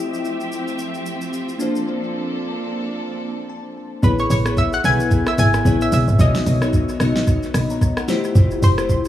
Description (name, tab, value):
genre	amapiano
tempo	111 BPM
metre	4/4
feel	swing 58% on 16ths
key	unclear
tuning	A4 = 440 Hz
part	glassy digital keys	accompaniment	0.0-9.1 s	A3 to B5	-23 LUFS	left 2 dB	chorus, low-pass filter, dub echo
part	warm studio string section	sustained chords	0.0-4.0 s	F3 to E5	-27 LUFS	right 1 dB	sidechain pumping, low-pass filter
part	smooth R&B drum kit	drums	0.1-9.1 s	hi-hat, kick drum, rim click, shaker, snare drum	-21 LUFS	equal	none
part	analog pluck	melody	4.0-9.1 s	B4 to G#5	-22 LUFS	equal	chorus, low-pass filter, dub echo
part	tight log drum bass	bass	4.0-9.1 s	F1 to B1	-18 LUFS	equal	none
room	light reverb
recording	echo-heavy mix, small room ambience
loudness	-16 LUFS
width	side -12 dB against mid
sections	0.0-4.0 A section; 4.0-9.1 B section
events	break 1.9-4.0; synth keys fill 3.2-4.0; drop 4.0-9.1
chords	0.0 Fmaj9; 1.6 Bbmaj9; 4.0 Amaj9; 6.2 Bmaj9; 8.1 Fmaj9